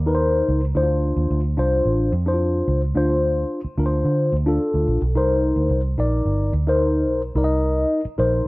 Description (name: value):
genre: uptempo 1960s-style soul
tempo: 109 BPM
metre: 4/4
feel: straight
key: C dorian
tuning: A4 = 441 Hz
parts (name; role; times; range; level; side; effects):
- vintage muted fingered electric bass; bass; 0.0-8.4 s; G1 to D3; -21 LUFS; right 1 dB; none
- mellow tine electric piano; accompaniment; 0.1-8.5 s; D4 to Eb5; -20 LUFS; left 1 dB; phaser
room: light reverb, digital ambience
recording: none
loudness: -18 LUFS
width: side -22 dB against mid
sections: 0.0-8.5 A section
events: none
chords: 0.0 Cm7; 0.8 Dm7; 5.2 Cm7